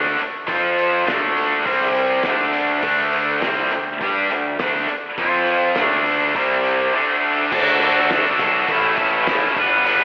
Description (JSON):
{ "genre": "classic rock", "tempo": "102 BPM", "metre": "4/4", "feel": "straight", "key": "unclear", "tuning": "A4 = 440 Hz", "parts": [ { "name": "tight distorted guitar", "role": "riff", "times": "0.0-10.0 s", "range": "A2 to B4", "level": "-16 LUFS", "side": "equal", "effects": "distortion, slapback echo" }, { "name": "fuzz picked electric bass", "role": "bass", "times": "0.0-10.0 s", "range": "G1 to G2", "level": "-26 LUFS", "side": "equal", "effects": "overdrive" }, { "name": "cloth-damped thuddy drum kit", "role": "drums", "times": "0.2-10.0 s", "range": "crash cymbal, hi-hat, kick drum, snare drum", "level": "-26 LUFS", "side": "equal", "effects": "none" } ], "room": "wet lush hall reverb, RT60 2.0 s", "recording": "big arena sound, telephone sound", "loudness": "-16 LUFS", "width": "side -33 dB against mid", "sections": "0.0-7.5 A section; 7.5-10.0 B section", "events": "none", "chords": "0.5 F5; 1.1 D5; 1.7 C5; 2.3 D5; 5.2 F5; 5.8 D5; 6.4 C5; 6.9 D5; 7.5 D; 8.7 A", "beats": "| 0.49 1.08 1.67 2.25 | 2.84 3.43 4.01 4.60 | 5.19 5.77 6.36 6.94 | 7.53 8.11 8.70 9.28 | 9.87" }